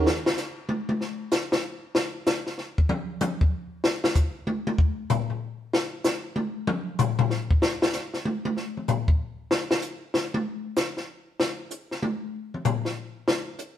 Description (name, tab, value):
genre	jazz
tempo	191 BPM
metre	3/4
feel	swing 64% on 8ths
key	none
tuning	none
part	compact cocktail drum kit	drums	0.1-13.7 s	hi-hat, kick drum, snare drum, toms	-24 LUFS	left 2 dB	none
room	wet stone room reverb, RT60 1.0 s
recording	band playing live in one room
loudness	-24 LUFS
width	side -10 dB against mid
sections	0.1-7.6 A section; 7.6-13.8 A section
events	drum solo 0.1-13.8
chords	none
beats	| 0.06 0.38 0.69 | 1.01 1.32 1.64 | 1.95 2.27 2.58 | 2.90 3.21 3.53 | 3.84 4.16 4.47 | 4.79 5.10 5.42 | 5.73 6.04 6.36 | 6.67 6.99 7.30 | 7.62 7.93 8.25 | 8.56 8.88 9.19 | 9.51 9.82 10.14 | 10.45 10.77 11.08 | 11.39 11.71 12.02 | 12.34 12.65 12.97 | 13.28 13.59